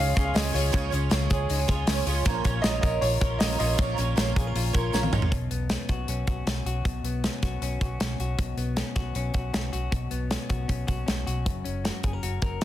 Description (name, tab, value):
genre	jangly indie pop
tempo	156 BPM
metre	4/4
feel	straight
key	unclear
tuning	A4 = 440 Hz
part	warm upright piano	melody	0.0-4.9 s	C#5 to E#5	-30 LUFS	right 1 dB	tape echo
part	picked twelve-string acoustic guitar	accompaniment	0.0-5.3 s	A#2 to C#5	-31 LUFS	right 8 dB	ensemble chorus
part	direct-recorded clean electric guitar	arpeggios	0.0-12.6 s	F#2 to A#4	-33 LUFS	left 4 dB	spring reverb
part	vintage muted fingered electric bass	bass	0.0-12.6 s	F#1 to C#2	-29 LUFS	equal	none
part	modern studio drum kit	drums	0.2-12.6 s	hi-hat, kick drum, snare drum, toms	-27 LUFS	equal	soft clipping on kick
part	tambourine	percussion	0.2-5.2 s	none	-44 LUFS	left 10 dB	none
room	light reverb, studio ambience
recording	dense, heavily limited modern master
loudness	-24 LUFS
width	side -13 dB against mid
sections	0.0-5.3 A section; 5.3-12.6 B section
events	drum fill 4.9-5.3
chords	0.0 C#; 2.3 A#m; 5.3 Bsus2; 11.5 F#